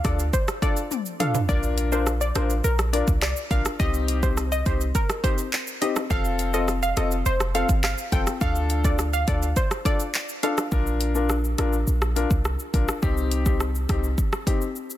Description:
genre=dancehall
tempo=104 BPM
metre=4/4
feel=straight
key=unclear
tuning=A4 = 440 Hz
part: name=glassy wavetable pluck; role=melody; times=0.0-10.5 s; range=Bb4 to G5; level=-29 LUFS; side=right 1 dB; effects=chorus, tape echo
part: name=clear concert grand piano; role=accompaniment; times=0.0-14.6 s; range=C4 to Bb4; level=-28 LUFS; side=left 5 dB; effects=none
part: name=clean 808-style bass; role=bass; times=0.0-14.1 s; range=F1 to D2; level=-25 LUFS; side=equal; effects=none
part: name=deep house drum kit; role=drums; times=0.0-15.0 s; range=handclaps, hi-hat, kick drum, rim click, shaker, toms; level=-25 LUFS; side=equal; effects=none
part: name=maracas and timbales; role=percussion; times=0.0-10.7 s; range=none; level=-36 LUFS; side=right 10 dB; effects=none
room=little or no reverb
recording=dense, heavily limited modern master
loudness=-21 LUFS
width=side -13 dB against mid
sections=0.0-10.7 A section; 10.7-15.0 B section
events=drum fill 0.9-1.5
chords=0.0 Dm; 1.5 Bb; 3.8 Cm; 6.1 F; 8.4 Dm; 10.7 Bb; 13.0 Cm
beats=0.34 0.91 | 1.49 2.07 2.64 3.22 | 3.80 4.37 4.95 5.53 | 6.11 6.68 7.26 7.83 | 8.41 8.99 9.57 10.14 | 10.72 11.30 11.87 12.45 | 13.03 13.61 14.18 14.76

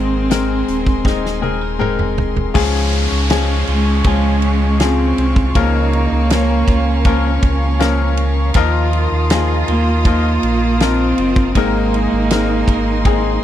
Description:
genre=pop ballad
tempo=80 BPM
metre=4/4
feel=straight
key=Db major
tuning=A4 = 440 Hz
part: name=warm cello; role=melody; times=0.0-13.4 s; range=Ab3 to C4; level=-19 LUFS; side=equal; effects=none
part: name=bright grand piano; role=accompaniment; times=0.0-13.4 s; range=Ab2 to Db5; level=-21 LUFS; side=left 9 dB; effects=none
part: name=warm studio string section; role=sustained chords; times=0.0-13.4 s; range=Ab4 to Eb6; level=-27 LUFS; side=left 2 dB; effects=none
part: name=clean electric guitar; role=arpeggios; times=0.0-13.4 s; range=Db3 to Bb4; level=-28 LUFS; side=right 15 dB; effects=warbly pitch drift
part: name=sub bass with octave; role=bass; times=0.0-13.4 s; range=Eb1 to Eb2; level=-18 LUFS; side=equal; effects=none
part: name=loose indie drum kit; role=drums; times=0.3-13.2 s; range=crash cymbal, hi-hat, kick drum, ride cymbal, snare drum, toms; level=-17 LUFS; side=equal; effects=none
part: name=warm chamber cello section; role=second line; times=2.5-13.4 s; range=Db4 to F4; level=-25 LUFS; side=right 5 dB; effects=none
part: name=downlifter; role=sound effects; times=2.5-8.5 s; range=none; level=-27 LUFS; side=right 1 dB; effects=none
room=studio ambience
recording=dry, close 1970s-style studio recording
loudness=-13 LUFS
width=side -11 dB against mid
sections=0.0-2.5 A section; 2.5-13.4 B section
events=drum fill 1.1-2.5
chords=0.0 Abadd9; 2.5 Db; 5.5 Bbm/Db; 8.6 Ebsus2; 11.6 Abadd9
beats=0.30 1.05 1.80 | 2.55 3.30 4.05 4.80 | 5.55 6.30 7.05 7.80 | 8.55 9.30 10.05 10.80 | 11.55 12.30 13.05

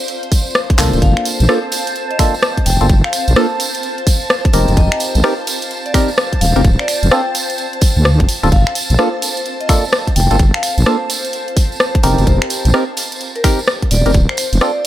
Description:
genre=UK garage, two-step garage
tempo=128 BPM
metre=4/4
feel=swing 64% on 16ths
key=G minor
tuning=A4 = 440 Hz
part: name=soft string machine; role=sustained chords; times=0.0-14.9 s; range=C5 to A5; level=-30 LUFS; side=equal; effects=ensemble chorus, sidechain pumping
part: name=garage drum kit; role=drums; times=0.0-14.9 s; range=finger snaps, handclaps, hi-hat, rim click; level=-18 LUFS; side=equal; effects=studio reverb
part: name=tambourine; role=percussion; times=0.0-14.7 s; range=none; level=-24 LUFS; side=right 4 dB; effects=none
part: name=granular cloud pad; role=texture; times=0.0-14.9 s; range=C5 to A5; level=-26 LUFS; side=equal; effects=built-in reverb, sidechain pumping
part: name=electronic kick drum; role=drums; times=0.3-14.3 s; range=none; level=-13 LUFS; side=equal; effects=studio reverb
part: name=percussive organ stab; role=stabs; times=0.8-14.7 s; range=Bb3 to Bb4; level=-20 LUFS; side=equal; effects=chorus, phaser, vintage 12-bit sampler grit, dub echo
part: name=deep soft wobble bass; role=bass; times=0.8-14.6 s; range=D1 to D2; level=-12 LUFS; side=equal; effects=chorus
part: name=vibraphone with medium mallets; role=melody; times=1.0-14.8 s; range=Bb4 to A5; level=-24 LUFS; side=left 2 dB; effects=digital delay
room=little or no reverb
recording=none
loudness=-12 LUFS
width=side -13 dB against mid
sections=0.0-14.9 A section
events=drum fill 0.8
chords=0.0 Dm7; 1.0 Gm7 (rootless); 4.5 F9sus4; 6.6 Dm7; 8.5 Gm7 (rootless); 12.0 F9sus4; 14.1 Dm7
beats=0.08 0.55 | 1.02 1.49 1.96 2.43 | 2.90 3.36 3.83 4.30 | 4.77 5.24 5.71 6.18 | 6.64 7.11 7.58 8.05 | 8.52 8.99 9.46 9.93 | 10.39 10.86 11.33 11.80 | 12.27 12.74 13.21 13.68 | 14.14 14.61

